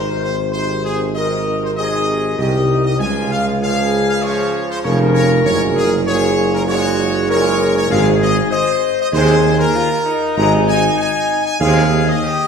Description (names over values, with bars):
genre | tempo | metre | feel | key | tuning
classical | 97 BPM | 4/4 | straight | Ab major | A4 = 440 Hz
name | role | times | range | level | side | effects
bright trumpet section | melody | 0.0-12.5 s | Ab4 to Bb5 | -20 LUFS | equal | none
clear trombone section | sustained chords | 0.0-11.8 s | Bb2 to Ab3 | -22 LUFS | right 2 dB | none
mellow French horn section | sustained chords | 0.0-12.5 s | Eb4 to C5 | -19 LUFS | left 4 dB | none
mellow tuba | bass | 0.0-12.1 s | F1 to Eb2 | -17 LUFS | right 2 dB | none
room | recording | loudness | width
wet scoring stage reverb, RT60 1.7 s | heard from further back in the room | -13 LUFS | side -6 dB against mid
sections
0.0-12.5 A section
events
none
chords
0.0 Ab; 3.0 Db; 5.5 Gbadd9; 7.9 Ab